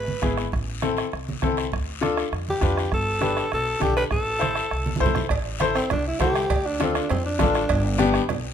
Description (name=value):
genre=latin, cumbia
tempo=201 BPM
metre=4/4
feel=straight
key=A minor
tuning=A4 = 440 Hz
part: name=raspy alto saxophone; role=melody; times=0.0-0.3, 2.5-8.1 s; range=C4 to B4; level=-25 LUFS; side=equal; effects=none
part: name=upright bass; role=bass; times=0.0-8.5 s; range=G1 to F2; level=-29 LUFS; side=right 1 dB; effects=none
part: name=congas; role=percussion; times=0.1-8.4 s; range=none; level=-31 LUFS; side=right 4 dB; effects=none
part: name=bright upright piano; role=accompaniment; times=0.2-8.2 s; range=B3 to C5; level=-25 LUFS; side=left 5 dB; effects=none
part: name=bombo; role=percussion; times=0.2-8.4 s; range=none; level=-29 LUFS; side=right 3 dB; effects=none
part: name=guiro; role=percussion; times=0.2-8.5 s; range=none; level=-37 LUFS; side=left 7 dB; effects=none
part: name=cowbell and timbales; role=percussion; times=5.3-8.4 s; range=none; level=-32 LUFS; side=right 7 dB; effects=none
room=light reverb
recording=minimal, uncompressed stereo recording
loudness=-21 LUFS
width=side -8 dB against mid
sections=0.0-5.3 A section; 5.3-8.5 B section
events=drum fill 4.9-5.3; alto saxophone solo 5.3-8.5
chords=0.0 E; 0.5 Am; 1.7 Dm; 2.9 G; 4.1 Am; 6.5 Dm; 7.7 G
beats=0.23 | 0.53 0.83 1.13 1.43 | 1.73 2.03 2.33 2.62 | 2.92 3.22 3.52 3.82 | 4.12 4.42 4.72 5.01 | 5.31 5.61 5.91 6.21 | 6.51 6.80 7.10 7.40 | 7.70 8.00 8.29